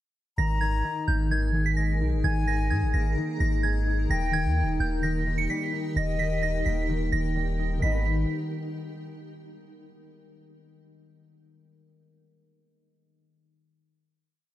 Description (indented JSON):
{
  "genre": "hip hop",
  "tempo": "129 BPM",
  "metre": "4/4",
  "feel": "half-time",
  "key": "G# harmonic minor",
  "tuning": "A4 = 441 Hz",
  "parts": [
    { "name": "soft synth bell", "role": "melody", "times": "0.4-8.0 s", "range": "G6 to C#7", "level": "-32 LUFS", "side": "right 5 dB", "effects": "chorus, tape echo" },
    { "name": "breathy silver concert flute", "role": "second line", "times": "0.4-8.0 s", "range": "D#5 to A#5", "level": "-35 LUFS", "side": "left 5 dB", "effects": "tape echo" },
    { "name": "concert harp", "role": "accompaniment", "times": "0.4-8.0 s", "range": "D#3 to D#4", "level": "-31 LUFS", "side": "left 2 dB", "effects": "none" },
    { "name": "granular cloud pad", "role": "sustained chords", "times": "1.1-8.0 s", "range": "D#4 to A#5", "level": "-38 LUFS", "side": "equal", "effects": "built-in reverb" },
    { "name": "long sustained 808-style bass", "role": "bass", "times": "0.4-8.3 s", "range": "D#1 to G#2", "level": "-26 LUFS", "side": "equal", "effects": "none" }
  ],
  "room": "small room ambience",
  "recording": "dark, warm production",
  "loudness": "-24 LUFS",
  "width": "side -14 dB against mid",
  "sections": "0.4-7.8 hook; 7.8-9.7 final chord",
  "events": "none",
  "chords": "0.4 G#sus2; 4.1 D#; 7.8 G#m"
}